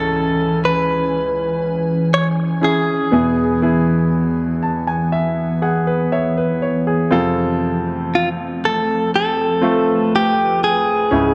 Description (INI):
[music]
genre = pop ballad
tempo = 60 BPM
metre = 4/4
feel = straight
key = unclear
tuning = A4 = 440 Hz
[part]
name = direct-recorded clean electric guitar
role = melody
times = 0.0-11.3 s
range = F4 to C#5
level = -20 LUFS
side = equal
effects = spring reverb, slapback echo
[part]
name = clear concert grand piano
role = accompaniment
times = 0.0-11.3 s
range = C#2 to A5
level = -22 LUFS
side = equal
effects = none
[part]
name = glassy FM pad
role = sustained chords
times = 0.0-11.3 s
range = E3 to G#5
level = -23 LUFS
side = equal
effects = ensemble chorus, built-in reverb
[sound]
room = small room ambience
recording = dry, close 1970s-style studio recording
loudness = -18 LUFS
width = mono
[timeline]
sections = 0.0-7.1 A section; 7.1-11.3 B section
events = grand piano fill 4.1-7.1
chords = 0.0 C#m; 3.1 E; 7.1 F